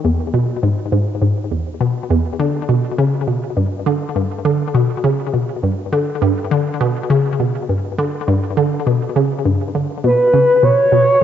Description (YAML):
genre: ambient, sequencer-driven space music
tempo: 102 BPM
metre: 4/4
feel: straight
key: unclear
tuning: A4 = 439 Hz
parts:
  - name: resonant blip pluck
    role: riff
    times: 0.0-11.2 s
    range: E2 to D3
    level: -16 LUFS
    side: equal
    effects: chorus, ping-pong delay
  - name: expressive synth lead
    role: melody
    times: 10.1-11.2 s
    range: B4 to C#5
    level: -11 LUFS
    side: equal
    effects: chorus, ping-pong delay
room: wet spring reverb, RT60 2.4 s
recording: echo-heavy mix, cassette tape, nothing above 7.7 kHz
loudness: -15 LUFS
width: side -9 dB against mid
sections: 0.0-11.2 A section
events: none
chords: 0.0 E; 2.4 G